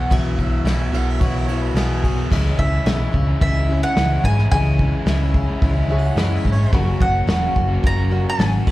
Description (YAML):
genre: folk rock and heartland rock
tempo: 109 BPM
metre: 4/4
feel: straight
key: unclear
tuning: A4 = 440 Hz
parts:
  - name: mandolin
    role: melody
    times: 0.0-8.7 s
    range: E5 to A#5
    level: -25 LUFS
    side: right 1 dB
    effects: none
  - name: picked twelve-string acoustic guitar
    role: accompaniment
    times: 0.0-8.7 s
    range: F#2 to F#4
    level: -26 LUFS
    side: left 3 dB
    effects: none
  - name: raw garage guitar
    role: riff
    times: 0.0-8.7 s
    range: F#2 to F#4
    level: -27 LUFS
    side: equal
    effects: overdrive, slapback echo
  - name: hollow-body short-scale fingered electric bass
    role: bass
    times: 0.0-8.7 s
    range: E1 to G#2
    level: -19 LUFS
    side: equal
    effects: none
  - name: soft brush drum kit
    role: drums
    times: 0.1-8.7 s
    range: crash cymbal, hi-hat, kick drum, ride cymbal, snare drum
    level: -21 LUFS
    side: equal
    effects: none
  - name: warm harmonica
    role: second line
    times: 0.9-2.3, 6.0-6.8 s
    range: G#4 to F#5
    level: -31 LUFS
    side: right 1 dB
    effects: slapback echo
  - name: bright upright piano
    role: accompaniment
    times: 2.3-8.7 s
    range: E4 to F#5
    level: -32 LUFS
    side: right 1 dB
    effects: slapback echo
room: little or no reverb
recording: live gig heard through the venue's PA, club reverb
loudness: -16 LUFS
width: side -16 dB against mid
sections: 0.0-2.3 A section; 2.3-8.7 B section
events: none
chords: 0.0 Bsus4; 2.3 C#m; 6.7 F#